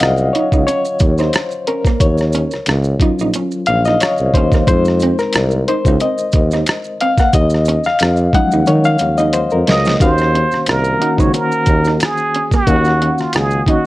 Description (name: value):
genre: R&B, neo-soul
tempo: 90 BPM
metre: 4/4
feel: swing 55% on 16ths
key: Eb dorian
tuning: A4 = 440 Hz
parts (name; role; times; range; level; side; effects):
- vintage hollow-body jazz guitar; second line; 0.0-13.8 s; Bb3 to Eb4; -22 LUFS; right 6 dB; none
- barky reed electric piano; accompaniment; 0.0-13.9 s; Eb3 to Gb5; -17 LUFS; left 2 dB; fast tremolo
- warm tuba; bass; 0.0-13.6 s; Bb1 to Eb3; -16 LUFS; equal; none
- boom bap sampler-style drum kit; drums; 0.0-13.8 s; hi-hat, kick drum, rim click, snare drum; -16 LUFS; equal; none
- finger snaps and maracas; percussion; 0.0-13.7 s; none; -30 LUFS; right 1 dB; none
- trumpet with plunger mute; melody; 9.7-13.9 s; F4 to Eb5; -17 LUFS; right 2 dB; slapback echo
room: light reverb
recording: worn, warbling old tape, cassette tape, warbly pitch drift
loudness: -12 LUFS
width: side -17 dB against mid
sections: 0.0-10.0 A section; 10.0-13.9 B section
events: reed electric piano solo 0.0-10.0; drum fill 9.3-10.0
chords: 0.0 Ebm7; 4.7 Fm7; 7.3 Ebm11; 10.0 Ebm7